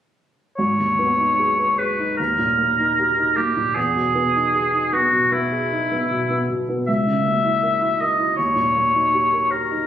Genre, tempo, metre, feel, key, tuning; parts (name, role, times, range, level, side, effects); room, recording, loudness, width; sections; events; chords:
classical, romantic duo for oboe and grand piano; 74-82 BPM; 4/4; rubato; G# minor; A4 = 440 Hz
warm oboe; melody; 0.6-9.9 s; E4 to E5; -18 LUFS; equal
dark grand piano; accompaniment; 0.6-9.9 s; G#1 to B4; -23 LUFS; right 1 dB
wet recital hall reverb, RT60 1.3 s; recorded on a phone in the room, studio reverb; -17 LUFS; side -10 dB against mid
0.6-9.9 A section
0.6 G#m; 2.2 D#; 3.8 Emaj7; 6.9 A#dim/C#; 8.4 D#7